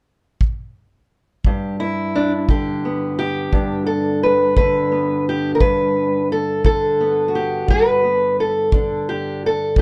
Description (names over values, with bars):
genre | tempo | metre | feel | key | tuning
acoustic country blues, solo or duo | 58 BPM (dotted quarters) | 12/8 | straight | G major | A4 = 440 Hz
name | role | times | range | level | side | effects
kick drum | drums | 0.4-9.8 s | none | -20 LUFS | equal | none
fingerpicked steel-string acoustic guitar | melody | 1.5-9.8 s | G2 to B4 | -19 LUFS | equal | none
room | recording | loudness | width
light reverb | dark, warm production | -19 LUFS | mono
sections
0.0-1.4 A section; 1.4-9.8 B section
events
none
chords
0.0 N.C.; 1.4 G